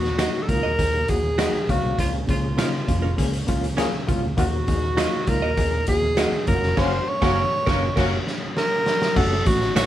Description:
uptempo 1960s-style soul; 100 BPM; 4/4; straight; A4 = 440 Hz
mellow tenor saxophone; melody; 0.0-9.9 s; F4 to Db5; -24 LUFS; right 1 dB
overdriven reed electric piano; accompaniment; 0.0-9.9 s; A3 to F5; -28 LUFS; left 3 dB; fast tremolo
tonewheel organ; sustained chords; 0.0-9.9 s; Db3 to Eb4; -36 LUFS; right 2 dB
vintage muted fingered electric bass; bass; 0.0-9.9 s; F1 to Db3; -26 LUFS; equal
raw garage drum kit; drums; 0.0-9.9 s; crash cymbal, hi-hat, kick drum, snare drum; -24 LUFS; equal
direct-recorded clean electric guitar; stabs; 0.2-9.9 s; Db4 to Eb5; -30 LUFS; right 4 dB; spring reverb
congas; percussion; 0.2-9.9 s; -36 LUFS; right 1 dB
finger snaps; percussion; 0.2-9.9 s; -34 LUFS; right 2 dB
mellow horn section; second line; 6.8-9.9 s; A3 to Bb4; -30 LUFS; left 2 dB
light reverb; band playing live in one room, vinyl crackle; -19 LUFS; side -12 dB against mid
0.0-9.2 A section
band accent 6.8-9.2; drum fill 8.0-9.2
0.0 Ebm; 1.7 Bbm; 4.4 Ebm; 6.5 Gb; 9.2 Gbm

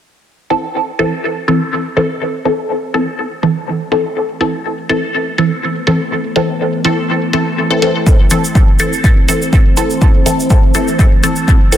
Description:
dub techno; 123 BPM; 4/4; straight; A minor; A4 = 442 Hz
deep dark ambient pad; sustained chords; 2.2-11.8 s; E4 to C5; -22 LUFS; equal; chorus, built-in reverb, sidechain pumping
filtered dub chord stab; stabs; 0.5-11.8 s; E3 to A4; -14 LUFS; equal; phaser, sidechain pumping, dub echo
electronic hi-hat; drums; 0.5-11.8 s; -19 LUFS; equal; overdrive, low-pass filter on hats, studio reverb
electronic kick drum; drums; 8.1-11.6 s; -10 LUFS; equal; studio reverb
egg shaker; percussion; 8.1-11.8 s; -22 LUFS; right 3 dB
light reverb; dense, heavily limited modern master; -11 LUFS; side -11 dB against mid
0.3-11.8 A section
filter sweep on drum 0.3-11.8
0.3 Am

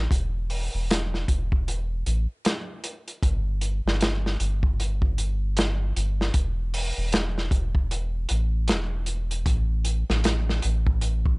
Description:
trip hop; 77 BPM; 4/4; swing 60% on 16ths; E minor; A4 = 441 Hz
soft dub sub bass; bass; 0.0-11.4 s; E1 to A1; -25 LUFS; equal
crunchy breakbeat drum kit; drums; 0.1-11.4 s; hi-hat, kick drum, snare drum; -25 LUFS; equal
little or no reverb; nothing above 10.8 kHz; -23 LUFS; side -32 dB against mid
0.0-11.4 A section

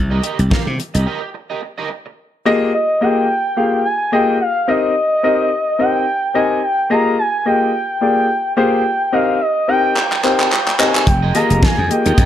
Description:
early-eighties boogie funk; 108 BPM; 4/4; swing 56% on 16ths; A4 = 440 Hz
slap bass; bass; 0.0-1.1, 11.1-12.3 s; F1 to C3; -16 LUFS; equal
electric guitar at the edge of break-up; riff; 0.1-2.1, 11.1-12.3 s; G4 to F5; -25 LUFS; right 6 dB; analog chorus
damped 70s drum kit; drums; 0.2-1.1, 10.0-12.3 s; handclaps, hi-hat, kick drum, snare drum; -16 LUFS; equal; gated reverb
congas; percussion; 0.5-0.7, 11.3-12.3 s; -27 LUFS; left 1 dB
warm concert grand piano; accompaniment; 2.5-12.2 s; Bb3 to F5; -17 LUFS; left 3 dB
gliding portamento lead; melody; 2.7-12.3 s; Eb5 to Bb5; -17 LUFS; right 1 dB; chorus, slapback echo
moderate large studio reverb, RT60 1.1 s; -14 LUFS; side -11 dB against mid
0.0-2.2 A section; 2.2-12.3 B section
break 1.1-2.2; drum fill 10.0-11.1
0.0 Cm7; 2.2 Fm11; 4.4 Cm7; 6.6 Fm11; 8.8 Cm7; 11.1 Fm11

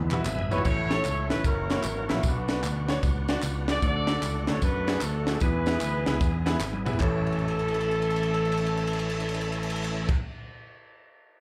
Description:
uptempo gospel; 151 BPM; 4/4; swing 65% on 8ths; A major; A4 = 440 Hz
percussive tonewheel organ; sustained chords; 0.0-10.1 s; E3 to G#5; -38 LUFS; equal; fast rotary speaker, overdrive, chorus vibrato
fingered electric bass; bass; 0.0-10.1 s; F#1 to F#2; -32 LUFS; equal
clear baby grand piano; accompaniment; 0.1-10.1 s; A1 to E5; -36 LUFS; equal
crisp fusion drum kit; drums; 0.1-10.2 s; crash cymbal, kick drum, ride cymbal, snare drum, toms; -32 LUFS; equal
handclaps and tambourine; percussion; 0.1-10.1 s; -42 LUFS; equal; slapback echo
dark horn section; melody; 0.5-10.1 s; B3 to D5; -33 LUFS; equal
light reverb; live gig heard through the venue's PA, club reverb; -27 LUFS; mono
0.7-7.0 A section; 7.0-10.2 B section
drum fill 0.0-0.7, 6.6-7.0, 7.2-10.0; grand piano fill 0.1-0.7; tonewheel organ fill 0.1-0.7
0.0 E; 0.7 A; 1.4 F#7; 2.2 Bm; 3.8 D; 5.4 E; 7.0 A

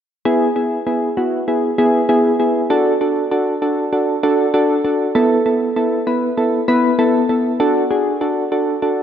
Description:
pop; 98 BPM; 4/4; straight; E mixolydian; A4 = 440 Hz
soft electric-piano-like synth keys; accompaniment; 0.3-9.0 s; B3 to B4; -14 LUFS; equal; chorus
wet lush hall reverb, RT60 2.4 s; -14 LUFS; side -9 dB against mid
0.3-9.0 A section
synth keys fill 8.8
0.3 E; 2.7 D; 5.2 Asus2; 7.6 D

